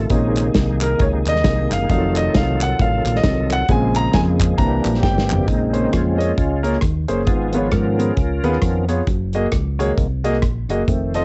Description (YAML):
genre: uptempo gospel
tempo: 134 BPM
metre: 4/4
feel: swing 59% on 8ths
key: Bb minor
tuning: A4 = 440 Hz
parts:
  - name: bright tonewheel organ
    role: sustained chords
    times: 0.0-11.2 s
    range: C3 to Bb4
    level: -25 LUFS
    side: equal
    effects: fast rotary speaker, overdrive, chorus vibrato, cassette tape
  - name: fingered electric bass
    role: bass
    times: 0.0-11.2 s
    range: F1 to Ab2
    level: -24 LUFS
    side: equal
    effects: none
  - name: clear concert grand piano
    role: accompaniment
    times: 0.1-11.2 s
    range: Ab2 to Bb5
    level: -23 LUFS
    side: equal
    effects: cassette tape
  - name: modern studio drum kit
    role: drums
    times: 0.1-11.2 s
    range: hi-hat, kick drum, rim click, snare drum, toms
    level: -23 LUFS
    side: equal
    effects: cassette tape
  - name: group handclap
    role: percussion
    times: 0.4-5.4 s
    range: none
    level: -31 LUFS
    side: equal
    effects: none
room: light reverb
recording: home recording on cassette, nothing above 8.0 kHz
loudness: -18 LUFS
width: mono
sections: 0.0-5.5 A section; 5.5-11.2 B section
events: grand piano solo 0.0-5.5; drum fill 5.0-5.5; tonewheel organ solo 5.5-11.2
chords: 0.1 Bbm11; 1.9 F7b9; 3.7 Bbm7; 4.6 C7; 5.5 Bbm9; 7.3 Db7/Ab; 9.1 Gb69